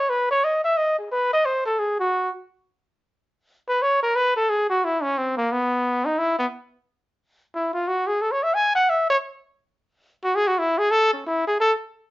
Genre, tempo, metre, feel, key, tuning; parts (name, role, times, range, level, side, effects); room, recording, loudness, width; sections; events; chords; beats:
jazz; 178 BPM; 4/4; swing 63% on 8ths; C# minor; A4 = 440 Hz
breathy trumpet; solo; 0.0-11.7 s; A#3 to G#5; -20 LUFS; equal
moderate studio reverb, RT60 0.6 s; worn, warbling old tape, cassette tape, warbly pitch drift, nothing above 7.5 kHz; -20 LUFS; side -17 dB against mid
0.0-2.8 A section; 2.8-12.1 B section
trumpet solo 2.8-12.1
| 0.07 0.41 0.75 1.09 | 1.43 1.76 2.10 2.44 | 2.78 3.12 3.46 3.80 | 4.13 4.47 4.81 5.15 | 5.49 5.82 6.16 6.50 | 6.84 7.18 7.51 7.85 | 8.19 8.53 8.86 9.20 | 9.54 9.88 10.21 10.55 | 10.89 11.23 11.57